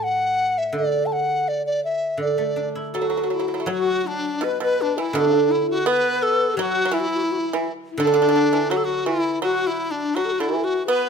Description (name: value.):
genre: chinese traditional, Chinese chamber ensemble.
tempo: 83 BPM.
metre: 2/4.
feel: rubato.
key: D gong mode.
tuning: A4 = 440 Hz.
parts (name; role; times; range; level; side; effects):
hollow large dizi; melody; 0.0-11.1 s; D4 to A5; -23 LUFS; equal; none.
guzheng; accompaniment; 0.0-10.2 s; A2 to A4; -23 LUFS; right 4 dB; none.
breathy mellow low xiao; second line; 2.9-11.1 s; D4 to B4; -25 LUFS; left 9 dB; none.
pipa; second line; 2.9-11.1 s; B2 to B3; -27 LUFS; right 6 dB; none.
room: light reverb.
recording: close, detailed microphones.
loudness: -19 LUFS.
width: side -6 dB against mid.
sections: 0.0-3.7 A section; 3.7-11.1 B section.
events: none.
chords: none.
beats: 0.02 | 0.75 1.48 | 2.20 2.94 | 3.69 4.43 | 5.16 5.87 | 6.58 7.28 | 7.99 8.72 | 9.45 10.17 | 10.89.